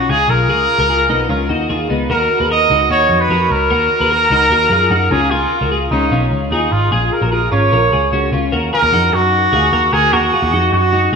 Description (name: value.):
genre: jangly indie pop.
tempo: 150 BPM.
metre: 4/4.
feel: straight.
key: Eb minor.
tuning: A4 = 440 Hz.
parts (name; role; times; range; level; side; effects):
warm trumpet; melody; 0.0-11.2 s; Eb4 to Eb5; -14 LUFS; right 1 dB; slapback echo.
twelve-string electric guitar; arpeggios; 0.0-11.2 s; Cb4 to Cb5; -18 LUFS; left 2 dB; analog chorus, slapback echo.
vintage muted picked electric bass; bass; 0.0-11.2 s; Ab1 to Gb2; -18 LUFS; equal; none.
room: wet plate reverb, RT60 3.8 s.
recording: rough home demo mix, studio ambience.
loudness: -12 LUFS.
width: side -5 dB against mid.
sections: 0.0-8.5 A section; 8.5-11.2 B section.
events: none.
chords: 0.0 Dbadd9; 2.1 Ebm; 5.1 Dbadd9; 6.9 Bbm7; 8.5 Ebm.